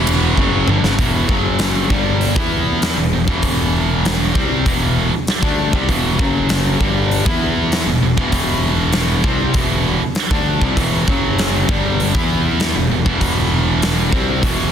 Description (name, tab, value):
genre	hard rock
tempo	98 BPM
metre	4/4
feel	straight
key	E minor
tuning	A4 = 440 Hz
part	overdriven tonewheel organ	sustained chords	0.0-1.0 s	E4 to F#5	-32 LUFS	equal	none
part	distorted electric guitar	riff	0.0-14.7 s	E2 to E4	-21 LUFS	left 9 dB	distortion
part	scooped high-gain guitar	riff	0.0-14.7 s	E2 to E4	-20 LUFS	right 9 dB	distortion
part	fuzz fingered electric bass	bass	0.0-14.7 s	E1 to E2	-21 LUFS	equal	overdrive
part	huge arena drum kit	drums	0.1-14.6 s	hi-hat, kick drum, ride cymbal, snare drum, toms	-19 LUFS	equal	none
room	light reverb, studio reverb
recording	dense, heavily limited modern master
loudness	-14 LUFS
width	side -8 dB against mid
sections	1.0-14.7 A section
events	drum fill 0.4-1.0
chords	0.0 Em; 1.0 E5; 1.3 F#5; 1.9 Em; 6.2 F#5; 6.8 Em; 11.1 F#5; 11.7 Em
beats	0.38 | 0.99 1.60 2.21 2.82 | 3.44 4.05 4.66 5.27 | 5.88 6.50 7.11 7.72 | 8.33 8.94 9.55 10.16 | 10.78 11.38 11.99 12.61 | 13.21 13.82 14.43